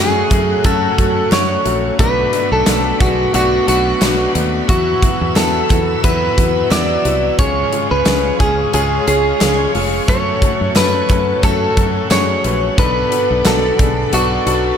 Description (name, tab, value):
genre	1980s-style pop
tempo	89 BPM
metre	4/4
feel	swing 55% on 16ths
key	F# minor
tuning	A4 = 443 Hz
part	clean electric guitar	melody	0.0-14.8 s	F#4 to D5	-17 LUFS	equal	analog chorus, ping-pong delay
part	clear baby grand piano	accompaniment	0.0-14.8 s	F#3 to B4	-21 LUFS	left 3 dB	tube saturation
part	cranked stack guitar	accompaniment	0.0-14.8 s	B2 to F#4	-25 LUFS	right 1 dB	overdrive, lush chorus
part	ensemble organ-string	sustained chords	0.0-14.8 s	A3 to E6	-24 LUFS	right 1 dB	ensemble chorus
part	fingered electric bass	bass	0.0-14.7 s	E#1 to F#2	-21 LUFS	equal	none
part	big rock drum kit	drums	0.3-14.6 s	hi-hat, kick drum, snare drum, tambourine	-18 LUFS	equal	gated reverb
part	group handclap	percussion	0.3-13.6 s	none	-32 LUFS	right 10 dB	none
room	light reverb, small room ambience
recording	none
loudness	-12 LUFS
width	side -8 dB against mid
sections	0.0-14.8 A section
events	none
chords	0.0 F#m; 2.0 Bm7; 4.7 Esus2; 7.4 C#; 10.1 F#m; 12.8 Bm7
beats	0.65 1.32 | 1.99 2.67 3.34 4.02 | 4.69 5.37 6.04 6.71 | 7.39 8.06 8.74 9.41 | 10.08 10.76 11.43 12.11 | 12.78 13.46 14.13